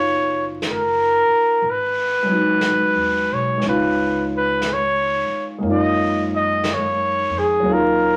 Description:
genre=jazz ballad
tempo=60 BPM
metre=4/4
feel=swing 66% on 8ths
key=F# major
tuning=A4 = 441 Hz
part: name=breathy trumpet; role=melody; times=0.0-8.2 s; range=G#4 to D#5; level=-21 LUFS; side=equal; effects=none
part: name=dark grand piano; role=accompaniment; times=0.0-8.2 s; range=E#3 to F#4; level=-25 LUFS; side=equal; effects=none
part: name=upright bass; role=bass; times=0.0-8.2 s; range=F#1 to F#2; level=-35 LUFS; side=equal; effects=none
part: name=jazz brush drum kit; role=drums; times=0.6-8.2 s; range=brushed snare drum, hi-hat, snare drum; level=-33 LUFS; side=equal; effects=none
room=wet studio reverb, RT60 0.6 s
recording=vinyl crackle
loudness=-19 LUFS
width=mono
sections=0.0-8.2 A section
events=none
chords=0.0 Bmaj9#11; 1.6 G#m7; 3.6 C#9; 5.6 F#maj13; 7.6 D#m9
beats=0.63 | 1.62 2.62 3.62 4.62 | 5.62 6.63 7.63

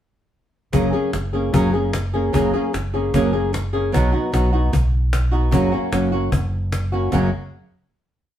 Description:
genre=flamenco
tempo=150 BPM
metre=4/4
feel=straight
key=F# major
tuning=A4 = 439 Hz
part: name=nylon-string guitar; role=accompaniment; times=0.7-7.3 s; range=F#2 to G#4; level=-22 LUFS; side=left 4 dB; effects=none
part: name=flamenco guitar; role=stabs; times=0.7-7.3 s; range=F#2 to G#4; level=-23 LUFS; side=right 4 dB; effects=none
part: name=fingered electric bass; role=bass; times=0.7-7.3 s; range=F#1 to B1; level=-22 LUFS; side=equal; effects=none
part: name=cajon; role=percussion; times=0.7-7.2 s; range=none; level=-24 LUFS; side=left 2 dB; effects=none
room=moderate studio reverb, RT60 0.7 s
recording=band playing live in one room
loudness=-17 LUFS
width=side -11 dB against mid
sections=0.7-7.1 groove; 7.1-8.4 final chord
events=none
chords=0.7 F#add9; 3.9 B; 5.5 F#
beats=| 0.73 1.13 1.53 1.93 | 2.33 2.73 3.13 3.53 | 3.93 4.33 4.73 5.13 | 5.53 5.93 6.33 6.72 | 7.12

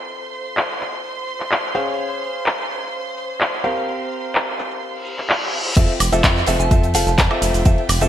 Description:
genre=piano house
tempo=127 BPM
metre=4/4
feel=straight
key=F major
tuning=A4 = 435 Hz
part: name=dark studio violin section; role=sustained chords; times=0.0-8.1 s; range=F4 to C6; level=-29 LUFS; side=right 2 dB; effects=sidechain pumping
part: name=clear grand piano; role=riff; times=0.0-8.1 s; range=C4 to F5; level=-24 LUFS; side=equal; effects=sidechain pumping, digital delay
part: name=house drum kit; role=drums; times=0.1-8.1 s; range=crash cymbal, handclaps, hi-hat, shaker, woodblock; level=-21 LUFS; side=equal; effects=low-pass filter on perc, small room ambience, low-pass filter on snare, low-pass filter on hats, low-pass filter on cymbals, gated reverb
part: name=reverse cymbal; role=sound effects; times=5.0-5.8 s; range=none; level=-26 LUFS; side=left 1 dB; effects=none
part: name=plucky analog bass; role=bass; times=5.8-8.1 s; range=F1 to F2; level=-20 LUFS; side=equal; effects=sidechain pumping
part: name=damped 70s drum kit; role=drums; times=5.8-8.1 s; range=hi-hat, snare drum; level=-32 LUFS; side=right 4 dB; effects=none
part: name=electronic kick drum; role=drums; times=5.8-7.8 s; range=none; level=-16 LUFS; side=equal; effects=small room ambience
part: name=soft synth bell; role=melody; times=6.6-7.1 s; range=A5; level=-26 LUFS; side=right 1 dB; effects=chorus, phaser, vintage 12-bit sampler grit, digital delay
room=light reverb, studio reverb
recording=bright 1980s-style digital production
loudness=-17 LUFS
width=side -11 dB against mid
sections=0.0-5.8 A section; 5.8-8.1 B section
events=reverse cymbal 5.0-5.8; drop 5.8-8.1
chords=0.0 Fmaj7; 1.8 Dbmaj7; 3.6 C7sus4; 5.8 Fmaj7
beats=| 0.10 0.57 1.04 1.51 | 1.99 2.46 2.93 3.40 | 3.88 4.35 4.82 5.29 | 5.77 6.24 6.71 7.18 | 7.66

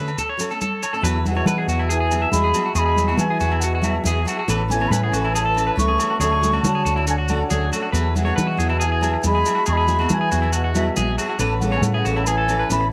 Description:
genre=highlife guitar band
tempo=139 BPM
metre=4/4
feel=straight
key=E mixolydian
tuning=A4 = 440 Hz
part: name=picked steel-string acoustic guitar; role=accompaniment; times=0.0-12.8 s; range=E3 to A4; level=-32 LUFS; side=equal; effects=none
part: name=electric guitar at the edge of break-up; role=arpeggios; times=0.0-12.8 s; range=E4 to E5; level=-28 LUFS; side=equal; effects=tape echo
part: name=hollow-body short-scale fingered electric bass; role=bass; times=0.0-12.9 s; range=A1 to E3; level=-24 LUFS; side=equal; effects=none
part: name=agogo bells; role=percussion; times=0.1-12.6 s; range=none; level=-33 LUFS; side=equal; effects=none
part: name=maracas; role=percussion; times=0.1-12.8 s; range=none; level=-32 LUFS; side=equal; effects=none
part: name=congas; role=percussion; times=0.2-12.8 s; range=none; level=-29 LUFS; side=equal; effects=none
part: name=combo organ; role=sustained chords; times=1.0-12.9 s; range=C#4 to C#5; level=-34 LUFS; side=equal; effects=none
part: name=wooden flute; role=melody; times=1.3-12.9 s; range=E5 to C#6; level=-26 LUFS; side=equal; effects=tape echo
part: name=mellow trombone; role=second line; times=1.3-12.9 s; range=B2 to A3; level=-31 LUFS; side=equal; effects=none
room=light reverb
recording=none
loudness=-20 LUFS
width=mono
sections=0.0-1.0 A section; 1.0-12.9 B section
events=none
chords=0.0 Dmaj7; 1.0 Eadd9; 4.5 Aadd9; 6.2 Dmaj7; 7.9 Eadd9; 11.4 Aadd9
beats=0.17 0.60 | 1.04 1.47 1.90 2.33 | 2.76 3.19 3.62 4.05 | 4.48 4.91 5.34 5.77 | 6.20 6.64 7.07 7.50 | 7.93 8.37 8.80 9.23 | 9.66 10.10 10.53 10.96 | 11.40 11.83 12.27 12.70

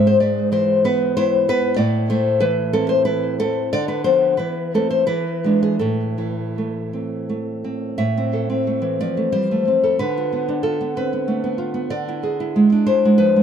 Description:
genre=romantic piece for solo classical guitar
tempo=79-99 BPM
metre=3/4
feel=rubato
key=A minor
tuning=A4 = 445 Hz
part: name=nylon-string guitar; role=solo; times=0.0-13.4 s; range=G#2 to E5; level=-17 LUFS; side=equal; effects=tape echo
room=light reverb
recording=dark, warm production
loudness=-17 LUFS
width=side -8 dB against mid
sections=0.0-8.0 A section; 8.0-13.4 B section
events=none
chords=0.0 E/G#; 1.8 Am; 3.7 Bdim/D; 4.4 Am/E; 5.1 E7; 5.8 Am; 10.0 Bdim/D; 11.9 E7/D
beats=0.53 1.17 | 1.79 2.42 3.07 | 3.73 4.39 5.08 | 5.81 6.56 7.28 | 8.00 8.67 9.32 | 9.97 10.62 11.27 | 11.92 12.56 13.20

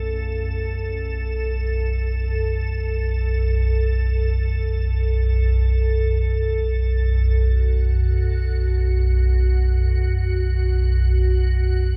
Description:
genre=dark ambient drone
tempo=free time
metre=none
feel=none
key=unclear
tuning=A4 = 440 Hz
part: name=dark baby grand piano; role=arpeggios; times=0.0-12.0 s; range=C#3 to C#4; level=-50 LUFS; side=equal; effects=none
part: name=deep rumbling drone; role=drone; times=0.0-12.0 s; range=B1 to F#2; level=-21 LUFS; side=equal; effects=built-in reverb, phaser, subtle chorus
part: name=icy glass pad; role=texture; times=0.0-12.0 s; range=F#4 to A4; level=-31 LUFS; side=equal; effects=chorus, built-in reverb
room=moderate huge ambient reverb, RT60 8.6 s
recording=dark, warm production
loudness=-21 LUFS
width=mono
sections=0.0-12.0 A section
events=filter sweep on synth drone 0.0-12.0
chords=0.0 B5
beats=free time

